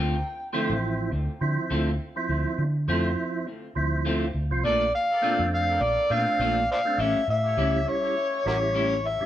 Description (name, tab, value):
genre	blues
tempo	102 BPM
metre	4/4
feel	swing 56% on 16ths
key	D minor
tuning	A4 = 439 Hz
part	clean electric guitar	stabs	0.0-8.9 s	A2 to F4	-31 LUFS	left 1 dB	analog delay
part	vintage muted fingered electric bass	bass	0.0-9.2 s	A1 to D3	-28 LUFS	equal	none
part	percussive tonewheel organ	accompaniment	0.5-9.3 s	F3 to F4	-30 LUFS	right 3 dB	chorus vibrato, fast rotary speaker
part	bright horn section	sustained chords	4.6-8.6 s	G4 to D5	-38 LUFS	left 1 dB	none
part	overdriven harmonica	melody	4.7-9.3 s	F#4 to F5	-25 LUFS	left 1 dB	analog delay
room	moderate stone room reverb, RT60 1.0 s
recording	band playing live in one room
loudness	-23 LUFS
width	side -12 dB against mid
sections	0.0-9.3 A section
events	none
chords	0.0 Dm7; 4.6 Bbmaj7; 7.0 A7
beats	0.53 1.12 1.71 | 2.29 2.88 3.47 4.05 | 4.64 5.23 5.82 6.40 | 6.99 7.58 8.16 8.75